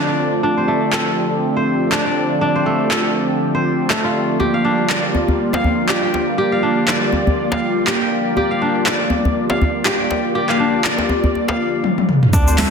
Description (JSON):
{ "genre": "afro house", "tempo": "121 BPM", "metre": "4/4", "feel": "swing 57% on 16ths", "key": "unclear", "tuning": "A4 = 440 Hz", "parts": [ { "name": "warm analog pad", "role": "sustained chords", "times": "0.0-12.7 s", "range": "D3 to G4", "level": "-22 LUFS", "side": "right 2 dB", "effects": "chorus, sidechain pumping" }, { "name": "kora", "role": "arpeggios", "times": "0.0-12.7 s", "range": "A3 to G5", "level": "-21 LUFS", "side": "equal", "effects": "sidechain pumping, low-pass filter, digital delay" }, { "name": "mellow synth brass", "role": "stabs", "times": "0.0-12.7 s", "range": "Bb3 to D5", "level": "-20 LUFS", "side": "left 2 dB", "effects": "chorus, phaser, sidechain pumping, digital delay" }, { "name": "deep house drum kit", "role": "drums", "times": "0.9-12.7 s", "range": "handclaps, hi-hat, shaker, toms", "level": "-20 LUFS", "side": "equal", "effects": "overdrive" }, { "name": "djembe", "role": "percussion", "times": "4.4-12.7 s", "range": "none", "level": "-21 LUFS", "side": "left 1 dB", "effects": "none" }, { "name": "warm 808-style bass", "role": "bass", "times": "12.3-12.6 s", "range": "D2", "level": "-17 LUFS", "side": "right 1 dB", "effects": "sidechain pumping" }, { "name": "electronic kick drum", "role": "drums", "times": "12.3-12.4 s", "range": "none", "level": "-15 LUFS", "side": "right 1 dB", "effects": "none" }, { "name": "congas", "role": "percussion", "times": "12.6-12.7 s", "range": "none", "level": "-19 LUFS", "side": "right 4 dB", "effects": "none" } ], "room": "moderate lush hall reverb, RT60 1.6 s, digital ambience", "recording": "dense, heavily limited modern master", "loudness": "-15 LUFS", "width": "side -6 dB against mid", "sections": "0.0-12.3 A section", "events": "filter sweep on kora 0.0-12.3; drum fill 11.8-12.3", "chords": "0.0 Dm7; 4.4 Gm7" }